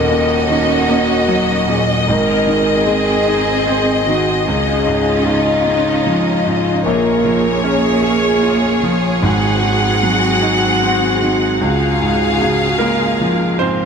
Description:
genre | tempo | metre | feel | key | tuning
six-eight pop ballad | 50 BPM (dotted quarters) | 6/8 | straight | Db major | A4 = 440 Hz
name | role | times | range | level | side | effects
mellow French horn section | second line | 0.0-13.6 s | Eb4 to Bb4 | -19 LUFS | left 2 dB | diffuse ambient delay
clear concert grand piano | accompaniment | 0.0-13.9 s | Eb1 to C5 | -17 LUFS | right 1 dB | none
warm studio string section | sustained chords | 0.0-13.9 s | Db3 to Gb5 | -16 LUFS | equal | none
room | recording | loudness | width
wet huge ambient reverb, RT60 8.8 s | dreamy mix soaked in reverb | -12 LUFS | side -6 dB against mid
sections
0.0-13.9 A section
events
none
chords
0.0 Ebm7; 2.1 Ab; 4.5 Dbadd9; 6.8 Bbm7; 9.2 Ab7; 11.6 Db

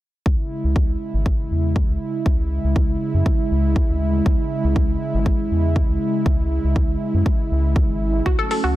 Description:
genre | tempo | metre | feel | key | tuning
melodic techno | 120 BPM | 4/4 | straight | C# minor | A4 = 438 Hz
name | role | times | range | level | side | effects
warm analog pad | sustained chords | 0.3-8.8 s | C#3 to E4 | -24 LUFS | right 1 dB | chorus, sidechain pumping
round analog bass | bass | 0.3-8.8 s | G#1 to F#2 | -21 LUFS | equal | sidechain pumping
electronic kick drum | drums | 0.3-8.4 s | none | -20 LUFS | equal | none
analog pluck | arpeggios | 8.3-8.7 s | F#4 to A4 | -21 LUFS | equal | chorus, cassette tape, sidechain pumping, tape echo
electronic hi-hat | drums | 8.5-8.6 s | none | -33 LUFS | right 2 dB | low-pass filter on hats
room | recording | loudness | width
digital ambience | none | -18 LUFS | side -15 dB against mid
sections
0.3-8.8 A section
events
filter sweep on analog synth bass 0.3-8.8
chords
0.3 C#m; 8.3 F#m

